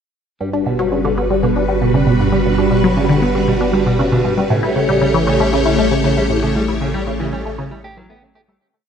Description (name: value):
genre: ambient, sequencer-driven space music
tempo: 117 BPM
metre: 4/4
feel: straight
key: G lydian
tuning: A4 = 438 Hz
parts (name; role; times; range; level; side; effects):
- phased string machine; sustained chords; 0.4-8.6 s; G3 to C#5; -18 LUFS; equal; ensemble chorus, phaser
- clean electric guitar; arpeggios; 0.4-8.6 s; C#3 to G4; -26 LUFS; right 1 dB; auto-pan, tape echo
- resonant blip pluck; riff; 0.4-8.5 s; G2 to E4; -17 LUFS; equal; phaser, tape echo
- warm sub bass; bass; 0.4-8.6 s; G1 to A1; -24 LUFS; equal; none
room: moderate plate reverb, RT60 3.2 s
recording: echo-heavy mix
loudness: -13 LUFS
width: side -7 dB against mid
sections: 0.4-8.6 A section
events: fade-in on clean electric guitar 0.4-8.6; fade-out 5.9-8.6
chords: 0.4 Gmaj7; 4.5 A7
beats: | 0.41 0.92 1.43 1.94 | 2.46 2.97 3.48 4.00 | 4.51 5.02 5.53 6.05 | 6.56 7.07 7.58 8.10